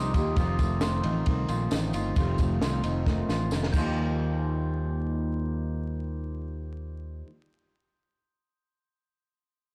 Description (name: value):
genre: jangly indie pop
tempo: 134 BPM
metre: 4/4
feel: straight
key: Eb major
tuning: A4 = 440 Hz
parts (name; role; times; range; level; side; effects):
- glockenspiel with brass mallets; second line; 0.0-0.5, 3.7-7.2 s; Eb6 to G6; -43 LUFS; equal; tape echo
- fingerpicked steel-string acoustic guitar; accompaniment; 0.0-7.3 s; F2 to G4; -37 LUFS; equal; none
- electric guitar through a small old amp; arpeggios; 0.0-7.3 s; F2 to F4; -35 LUFS; equal; spring reverb, tape echo
- fingered electric bass; bass; 0.0-7.2 s; F1 to Eb2; -32 LUFS; equal; tube saturation
- compact cocktail drum kit; drums; 0.1-3.8 s; crash cymbal, kick drum, ride cymbal, snare drum; -31 LUFS; equal; soft clipping on snare
- tambourine; percussion; 0.2-4.2 s; none; -49 LUFS; equal; none
room: light reverb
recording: blown-out, overdriven recording, vinyl crackle, overdrive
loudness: -28 LUFS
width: mono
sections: 0.0-4.0 A section; 4.0-7.5 B section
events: drum fill 3.1-4.0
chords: 0.4 F7; 3.7 Ebadd9